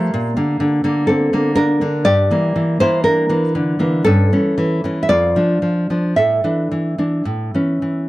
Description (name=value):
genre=romantic piece for solo classical guitar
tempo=54-64 BPM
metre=2/4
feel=rubato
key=unclear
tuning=A4 = 440 Hz
part: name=nylon-string guitar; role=solo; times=0.0-8.1 s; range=F2 to E5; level=-14 LUFS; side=equal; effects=none
room=little or no reverb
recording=dry, close 1970s-style studio recording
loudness=-14 LUFS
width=side -17 dB against mid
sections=0.0-8.1 A section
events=none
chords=0.1 Bb; 2.1 Em7b5/G; 4.0 A7/G; 5.1 Dm/F; 6.2 Asus4; 7.3 A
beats=| 0.12 1.07 | 2.05 3.04 | 4.04 5.07 | 6.16 7.26